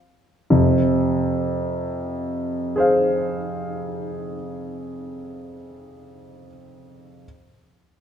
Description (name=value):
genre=classical-period piano sonatina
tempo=53 BPM (dotted quarters)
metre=6/8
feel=rubato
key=F minor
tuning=A4 = 442 Hz
part: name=clear grand piano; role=solo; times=0.5-7.3 s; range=F2 to F5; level=-20 LUFS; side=equal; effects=none
room=wet recital hall reverb, RT60 1.7 s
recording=dark, warm production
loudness=-20 LUFS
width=side -8 dB against mid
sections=0.5-5.0 A section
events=none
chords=0.0 N.C.; 0.5 Fm